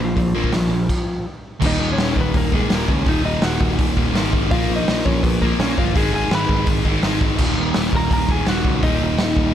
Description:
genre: punk rock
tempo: 166 BPM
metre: 4/4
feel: straight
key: Eb minor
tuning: A4 = 440 Hz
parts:
  - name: lightly driven lead guitar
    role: melody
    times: 0.0-9.5 s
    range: F3 to Cb6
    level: -24 LUFS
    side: left 2 dB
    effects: none
  - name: sludgy distorted guitar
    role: riff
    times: 0.0-9.5 s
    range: Eb2 to Bb3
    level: -21 LUFS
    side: equal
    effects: overdrive
  - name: modern bright picked electric bass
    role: bass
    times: 0.0-9.5 s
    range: Eb1 to Db2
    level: -23 LUFS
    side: equal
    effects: none
  - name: raw garage drum kit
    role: drums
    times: 0.2-9.5 s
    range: crash cymbal, hi-hat, kick drum, snare drum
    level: -20 LUFS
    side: equal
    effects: none
room: little or no reverb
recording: none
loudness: -16 LUFS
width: side -10 dB against mid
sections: 0.0-1.6 A section; 1.6-9.5 B section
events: stop 0.9-1.6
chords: 0.0 Bb5; 1.6 Ebm; 4.5 Bbm; 6.0 Abm; 7.4 Ebm

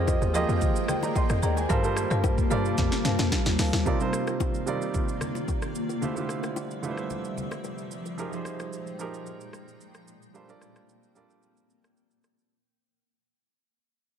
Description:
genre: amapiano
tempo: 111 BPM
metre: 4/4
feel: straight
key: C minor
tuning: A4 = 436 Hz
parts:
  - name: warm grand piano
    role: accompaniment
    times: 0.0-12.5 s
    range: C3 to C6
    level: -31 LUFS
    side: right 5 dB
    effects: none
  - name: granular cloud pad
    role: sustained chords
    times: 0.0-12.5 s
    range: Bb2 to G5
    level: -33 LUFS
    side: left 2 dB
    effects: built-in reverb
  - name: marimba with medium hard mallets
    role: stabs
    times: 0.0-3.7 s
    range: Ab4 to A5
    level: -34 LUFS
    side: left 6 dB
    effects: tape echo
  - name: hollow log drum bass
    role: bass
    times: 0.0-3.8 s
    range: D2 to G2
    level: -27 LUFS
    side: equal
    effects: none
  - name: afro-pop drum kit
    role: drums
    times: 0.1-12.5 s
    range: hi-hat, kick drum, rim click, shaker, snare drum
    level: -29 LUFS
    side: equal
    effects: none
  - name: bongos and congas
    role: percussion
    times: 0.1-8.2 s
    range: none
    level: -36 LUFS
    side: left 7 dB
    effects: none
room: small room ambience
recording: none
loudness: -25 LUFS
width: side -8 dB against mid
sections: 0.0-3.9 A section; 3.9-12.5 B section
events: drop 0.0-3.9; drum fill 2.8-3.9; fade-out 3.9-12.5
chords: 0.0 Fm11; 1.7 Gm11; 3.9 Cm11; 6.0 Dm11; 8.2 Fm11; 10.3 Gm11

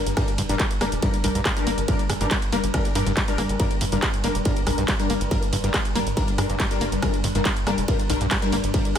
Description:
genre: driving peak-time techno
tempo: 140 BPM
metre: 4/4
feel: straight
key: G minor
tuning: A4 = 440 Hz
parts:
  - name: rave stab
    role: stabs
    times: 0.0-8.9 s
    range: G3 to Bb4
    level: -27 LUFS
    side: left 3 dB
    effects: chorus, built-in reverb, sidechain pumping, ping-pong delay
  - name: tight sequencer bass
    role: bass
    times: 0.0-9.0 s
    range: F1 to G2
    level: -28 LUFS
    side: equal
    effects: sidechain pumping
  - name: swarming drone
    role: drone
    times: 0.0-9.0 s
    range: G2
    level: -32 LUFS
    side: equal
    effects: built-in reverb, sidechain pumping
  - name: techno drum kit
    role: drums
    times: 0.1-9.0 s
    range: handclaps, hi-hat, ride cymbal, rim click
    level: -28 LUFS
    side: right 1 dB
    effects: none
  - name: screaming distorted acid line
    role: riff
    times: 0.2-9.0 s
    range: G2 to Bb3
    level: -29 LUFS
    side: equal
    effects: distortion, chorus, sidechain pumping, ping-pong delay
  - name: electronic kick drum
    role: drums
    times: 0.2-8.8 s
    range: none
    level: -25 LUFS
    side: equal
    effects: distortion
room: light reverb, digital ambience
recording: none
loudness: -20 LUFS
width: side -9 dB against mid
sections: 0.0-9.0 A section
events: none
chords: 0.0 Gm

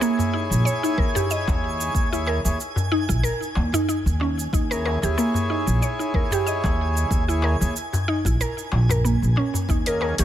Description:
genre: organic downtempo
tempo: 93 BPM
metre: 4/4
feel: swing 55% on 16ths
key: unclear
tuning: A4 = 441 Hz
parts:
  - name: hand-pumped harmonium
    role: accompaniment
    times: 0.0-10.2 s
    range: Bb3 to Db5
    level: -28 LUFS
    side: left 1 dB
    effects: sidechain pumping, ping-pong delay
  - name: mallet-like synth pluck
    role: arpeggios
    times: 0.0-10.2 s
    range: Bb3 to Eb5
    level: -26 LUFS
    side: right 1 dB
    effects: analog chorus, ping-pong delay
  - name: electronic cabasa and hi-hat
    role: drums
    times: 0.0-10.2 s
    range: none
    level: -32 LUFS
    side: right 3 dB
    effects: none
  - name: twinkling granular texture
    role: texture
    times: 0.0-10.2 s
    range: Ab5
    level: -35 LUFS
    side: right 3 dB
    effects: built-in reverb
  - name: darbuka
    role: percussion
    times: 0.2-10.2 s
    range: none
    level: -29 LUFS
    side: left 1 dB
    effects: none
  - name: upright bass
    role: bass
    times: 0.5-10.2 s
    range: Bb1 to Eb2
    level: -23 LUFS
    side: equal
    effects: sidechain pumping
  - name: electronic kick drum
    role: drums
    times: 1.0-9.8 s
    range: none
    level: -24 LUFS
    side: equal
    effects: none
room: light reverb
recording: none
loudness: -20 LUFS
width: side -11 dB against mid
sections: 0.0-10.2 A section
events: none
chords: 0.0 Dbm; 9.7 Eb7sus4

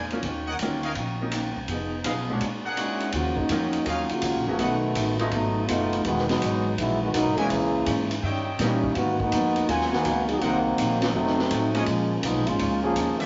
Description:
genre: jazz, big band swing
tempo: 165 BPM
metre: 4/4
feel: swing 66% on 8ths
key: Eb minor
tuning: A4 = 440 Hz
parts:
  - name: fingerpicked swing-style acoustic guitar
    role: accompaniment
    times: 0.0-13.2 s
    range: Bb2 to Bb4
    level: -35 LUFS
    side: equal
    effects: none
  - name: bright trumpet section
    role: stabs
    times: 0.0-4.8, 7.4-13.3 s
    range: Cb4 to G#5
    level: -34 LUFS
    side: equal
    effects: none
  - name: upright bass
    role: bass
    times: 0.0-13.3 s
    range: E1 to Bb2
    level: -34 LUFS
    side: equal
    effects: none
  - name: clear baby grand piano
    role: accompaniment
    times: 0.1-9.0, 11.7-11.9 s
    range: Bb2 to Gb4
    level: -34 LUFS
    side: equal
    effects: none
  - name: swinging big-band drum kit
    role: drums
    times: 0.1-13.3 s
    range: hi-hat, kick drum, ride cymbal, snare drum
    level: -34 LUFS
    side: equal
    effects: none
  - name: mellow trombone section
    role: second line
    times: 2.8-13.3 s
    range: Db3 to Bb4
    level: -27 LUFS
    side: equal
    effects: none
room: wet large studio reverb, RT60 1.2 s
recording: nothing above 7.6 kHz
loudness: -25 LUFS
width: mono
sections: 0.0-3.1 A section; 3.1-13.3 B section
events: trombone section solo 3.1-13.3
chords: 0.2 Ebm7; 1.7 Fm7b5; 2.4 Bb7alt; 3.1 Ebm9; 4.6 B7; 6.1 Emaj9; 7.5 Bbm7b5; 8.2 Eb7b9; 9.0 Abm9; 10.4 Cm7b5; 11.1 F7b9; 11.9 Bbm7

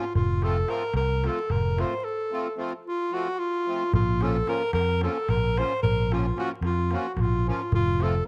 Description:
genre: balkan folk, Balkan wedding band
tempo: 222 BPM (eighths)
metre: 7/8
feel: straight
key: unclear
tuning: A4 = 440 Hz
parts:
  - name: clear alto saxophone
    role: melody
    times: 0.0-8.3 s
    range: F4 to C5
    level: -30 LUFS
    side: equal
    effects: tape echo
  - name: accordion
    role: accompaniment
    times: 0.0-8.3 s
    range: F3 to F4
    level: -35 LUFS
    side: equal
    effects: light tremolo tuning
  - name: fingered electric bass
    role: bass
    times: 0.2-8.2 s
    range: F1 to F2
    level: -28 LUFS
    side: equal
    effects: none
  - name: darbuka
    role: percussion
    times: 0.2-8.2 s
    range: none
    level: -33 LUFS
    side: equal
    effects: none
room: light reverb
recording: vinyl crackle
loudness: -26 LUFS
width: mono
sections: 0.0-3.9 A section; 3.9-8.3 A section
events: break 2.1-3.9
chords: 0.2 F; 3.9 Bbm; 7.7 F

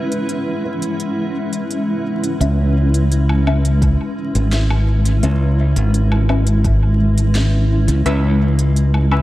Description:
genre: ambient dub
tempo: 85 BPM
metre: 4/4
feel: straight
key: C# minor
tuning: A4 = 440 Hz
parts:
  - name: granular cloud pad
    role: sustained chords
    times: 0.0-9.2 s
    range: G#3 to E5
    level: -20 LUFS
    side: equal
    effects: built-in reverb
  - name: drifting glass-harmonics texture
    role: texture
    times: 0.0-2.4 s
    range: B3 to B4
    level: -36 LUFS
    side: right 4 dB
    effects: chorus, built-in reverb
  - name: organic electronic drum kit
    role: drums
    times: 0.1-9.2 s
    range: hi-hat, snare drum, woodblock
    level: -28 LUFS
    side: equal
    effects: dub echo
  - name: filtered dub chord stab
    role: stabs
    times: 0.6-9.2 s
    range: C#4 to E5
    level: -25 LUFS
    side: left 2 dB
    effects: phaser, wide subtle chorus, dub echo
  - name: modern bright fingered electric bass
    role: bass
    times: 2.4-9.2 s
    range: G#1 to C#2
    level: -14 LUFS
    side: equal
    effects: tube saturation
  - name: electronic kick drum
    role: drums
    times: 3.8-6.8 s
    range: none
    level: -19 LUFS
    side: equal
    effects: overdrive
room: light reverb, digital ambience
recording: vinyl crackle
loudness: -14 LUFS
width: side -16 dB against mid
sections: 0.0-2.4 A section; 2.4-9.2 B section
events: none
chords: 0.0 C#m7

